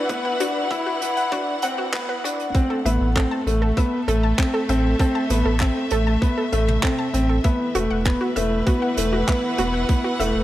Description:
piano and strings electronica; 98 BPM; 4/4; straight; A dorian; A4 = 440 Hz
warm studio string section; sustained chords; 0.0-10.4 s; E3 to F#5; -27 LUFS; equal
analog pluck; arpeggios; 0.0-10.3 s; F#4 to A5; -28 LUFS; equal; chorus, sidechain pumping, tape echo
warm sub bass; bass; 0.0-10.4 s; E1 to A1; -22 LUFS; equal; sidechain pumping
felt-muted upright piano; riff; 0.1-10.4 s; A3 to E4; -23 LUFS; left 1 dB; tape echo
electronic kick drum; drums; 0.1-10.0 s; -21 LUFS; equal
jazz brush drum kit; drums; 0.1-10.3 s; handclaps, hi-hat, toms; -30 LUFS; right 2 dB
light reverb, small room ambience; high-pass filter; -19 LUFS; side -14 dB against mid
0.0-2.5 A section; 2.5-10.4 B section
build-up 0.0-2.5; drop 2.5-10.4
0.0 Esus2; 2.5 Am; 7.4 Esus2

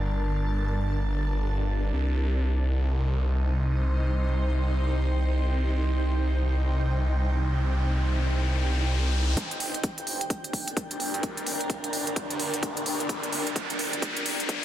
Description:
bass house; 129 BPM; 4/4; swing 61% on 16ths; G minor; A4 = 440 Hz
phased detuned saw bass; bass; 0.0-13.9 s; G1 to G2; -26 LUFS; equal; phaser, overdrive, sidechain pumping, high-pass filter
granular cloud pad; texture; 0.0-14.6 s; D4 to A5; -33 LUFS; right 1 dB; built-in reverb, sidechain pumping
riser; sound effects; 6.8-14.6 s; -34 LUFS; left 1 dB
electronic hi-hat; drums; 9.4-14.6 s; -32 LUFS; right 1 dB; high-pass filter on hats
electronic kick drum; drums; 9.4-14.6 s; -32 LUFS; equal; high-pass filter on kick
light reverb; dense, heavily limited modern master, high-pass filter; -24 LUFS; side -12 dB against mid
0.0-9.4 A section; 9.4-14.6 B section
riser 6.8-9.4, 9.4-14.6; build-up 9.4-14.6; drum fill 13.1-14.6
0.0 Gm; 1.9 Cm; 9.4 Gm

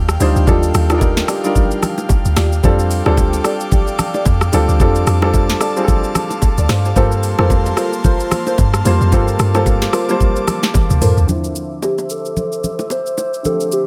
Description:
amapiano; 111 BPM; 4/4; swing 58% on 16ths; D minor; A4 = 441 Hz
warm baby grand piano; accompaniment; 0.0-13.9 s; D3 to F5; -22 LUFS; equal; low-pass filter
airy breathy pad; sustained chords; 0.0-13.9 s; Bb3 to E6; -28 LUFS; equal; chorus, low-pass filter
deep log drum bass; bass; 0.0-11.3 s; D2 to G2; -18 LUFS; equal
smooth R&B drum kit; drums; 0.1-13.9 s; hi-hat, kick drum, rim click, shaker, snare drum, toms; -19 LUFS; equal
bongos and congas; percussion; 0.2-13.6 s; -26 LUFS; equal
deep mellow chord stab; stabs; 0.5-11.2 s; F4 to D5; -26 LUFS; equal; chorus, phaser, delay
soft struck synth lead; melody; 11.8-13.9 s; G4 to C5; -22 LUFS; equal; chorus, tremolo, low-pass filter, delay
digital ambience; -15 LUFS; mono
0.0-11.3 A section; 11.3-13.9 B section
drop 0.0-11.3; drum fill 10.7-11.3
0.0 Ebmaj9; 2.6 F69; 7.0 Gm11; 11.3 Dm9

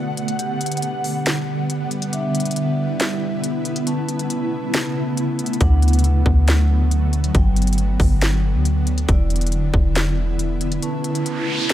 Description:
hip hop, atmospheric cloud-rap; 138 BPM; 4/4; half-time; A4 = 441 Hz
ethereal airy pad; sustained chords; 0.0-11.7 s; C#3 to F#5; -22 LUFS; equal; ensemble chorus, built-in reverb, tremolo, sidechain pumping
vibraphone with medium hard mallets; texture; 0.0-11.7 s; F#3 to A5; -31 LUFS; left 1 dB
trap drum kit; drums; 0.2-11.7 s; hi-hat, kick drum, snare drum; -22 LUFS; equal
soft 808-style bass; bass; 5.6-10.8 s; E1 to D2; -17 LUFS; equal
noise sweep; sound effects; 11.2-11.7 s; -25 LUFS; right 2 dB
light reverb; -17 LUFS; side -12 dB against mid
0.0-11.7 A section
break 0.0-5.6; kick muted 10.8-11.7; noise sweep 11.2-11.7
0.4 Gmaj7; 2.1 Em7; 3.9 Aadd9; 5.6 D6; 7.3 Gmaj7; 9.1 Em7; 10.8 Aadd9

